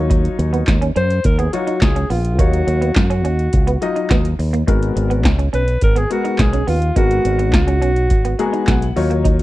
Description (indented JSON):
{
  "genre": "early-eighties boogie funk",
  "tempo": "105 BPM",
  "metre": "4/4",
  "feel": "straight",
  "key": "G# dorian",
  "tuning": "A4 = 440 Hz",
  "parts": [
    { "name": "warm baby grand piano", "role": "accompaniment", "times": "0.0-9.4 s", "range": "F#3 to A#5", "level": "-22 LUFS", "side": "left 5 dB", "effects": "none" },
    { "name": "semi-hollow electric guitar", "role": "riff", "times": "0.0-9.3 s", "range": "G#3 to D#4", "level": "-26 LUFS", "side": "right 5 dB", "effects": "ensemble chorus" },
    { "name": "fingered electric bass with an envelope filter", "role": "bass", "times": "0.0-9.4 s", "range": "G#1 to F#2", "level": "-18 LUFS", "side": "equal", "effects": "none" },
    { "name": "electro analog drum machine", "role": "drums", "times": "0.1-9.4 s", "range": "handclaps, hi-hat, kick drum, snare drum", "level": "-17 LUFS", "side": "equal", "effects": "none" },
    { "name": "breathy alto saxophone", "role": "melody", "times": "1.0-8.6 s", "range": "E#4 to B#4", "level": "-21 LUFS", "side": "equal", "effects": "slapback echo" }
  ],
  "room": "digital ambience",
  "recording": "dry, close 1970s-style studio recording",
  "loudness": "-14 LUFS",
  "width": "side -16 dB against mid",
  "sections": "0.0-9.4 A section",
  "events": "grand piano fill 8.1-9.2",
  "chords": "0.0 D#m9; 4.7 G#m9",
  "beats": "| 0.10 0.67 1.25 1.82 | 2.39 2.96 3.53 4.10 | 4.67 5.25 5.82 6.39 | 6.96 7.53 8.10 8.67 | 9.25"
}